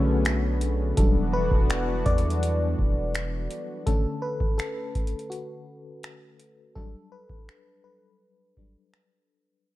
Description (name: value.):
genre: contemporary R&B.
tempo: 83 BPM.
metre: 4/4.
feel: straight.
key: unclear.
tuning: A4 = 440 Hz.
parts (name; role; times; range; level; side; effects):
FM electric piano with auto-pan; accompaniment; 0.0-9.7 s; D3 to D5; -30 LUFS; left 2 dB; none.
lush unison pad; sustained chords; 0.0-3.8 s; D3 to F#4; -32 LUFS; equal; chorus, sidechain pumping.
long sustained 808-style bass; bass; 0.0-3.5 s; E1 to E2; -27 LUFS; equal; none.
booming analog drum machine; drums; 0.3-9.1 s; finger snaps, hi-hat, kick drum; -25 LUFS; equal; none.
room: little or no reverb.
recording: dark, warm production.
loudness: -23 LUFS.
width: side -16 dB against mid.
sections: 0.0-9.6 A section.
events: fade-out 0.0-9.6; FM electric piano solo 0.0-9.6.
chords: 0.0 Bm9; 1.0 Em9; 3.9 Dmaj7; 6.8 Gmaj9/F#.